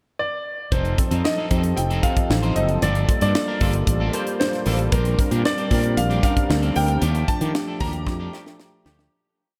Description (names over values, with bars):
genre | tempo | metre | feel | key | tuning
polished 1980s jazz-funk pop | 114 BPM | 4/4 | straight | unclear | A4 = 442 Hz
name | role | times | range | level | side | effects
clear grand piano | melody | 0.2-8.6 s | Bb4 to Bb5 | -29 LUFS | equal | none
electric guitar at the edge of break-up | riff | 0.7-9.0 s | F3 to C5 | -34 LUFS | equal | subtle chorus
fretless electric bass | bass | 0.7-9.1 s | F1 to Eb3 | -24 LUFS | equal | none
crisp fusion drum kit | drums | 0.7-9.1 s | hi-hat, kick drum, snare drum | -26 LUFS | equal | none
barky tine electric piano | accompaniment | 1.0-9.1 s | F3 to C5 | -29 LUFS | equal | analog chorus
room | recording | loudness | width
moderate cathedral reverb, RT60 6.0 s | dreamy mix soaked in reverb | -21 LUFS | mono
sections
0.0-0.7 pickup bar; 0.7-9.1 verse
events
fade-out 7.0-9.1; drum fill 8.1-9.1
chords
0.0 N.C.; 0.7 F7; 2.8 Gm9; 4.9 Bb69; 7.0 Ebmaj9#11